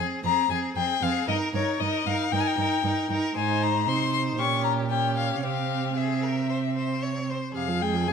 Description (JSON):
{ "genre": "quick classical-period movement for string quartet", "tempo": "115 BPM", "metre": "4/4", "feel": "straight", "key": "F minor", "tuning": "A4 = 444 Hz", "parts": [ { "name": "warm violin", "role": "melody", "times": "0.0-8.1 s", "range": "Db5 to Db6", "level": "-27 LUFS", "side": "left 11 dB", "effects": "none" }, { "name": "clear violin", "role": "second line", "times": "0.0-8.1 s", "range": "G4 to Db5", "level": "-32 LUFS", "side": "left 3 dB", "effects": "none" }, { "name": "warm viola", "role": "accompaniment", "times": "0.0-8.1 s", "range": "C3 to Eb4", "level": "-30 LUFS", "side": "right 3 dB", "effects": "none" }, { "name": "rich cello", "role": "bass", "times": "0.0-8.1 s", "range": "F2 to C3", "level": "-29 LUFS", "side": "right 6 dB", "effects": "none" } ], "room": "moderate recital hall reverb, RT60 1.6 s", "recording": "close, detailed microphones", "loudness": "-23 LUFS", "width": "side -6 dB against mid", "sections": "0.0-8.1 A section", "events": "none", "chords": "0.0 Fm; 1.3 Eb/G; 3.4 Ab; 4.4 Gdim/Bb; 5.4 C; 7.6 Fm", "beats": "0.24 0.76 | 1.29 1.81 2.33 2.85 | 3.36 3.87 4.39 4.91 | 5.43 5.96 6.49 7.02 | 7.55 8.08" }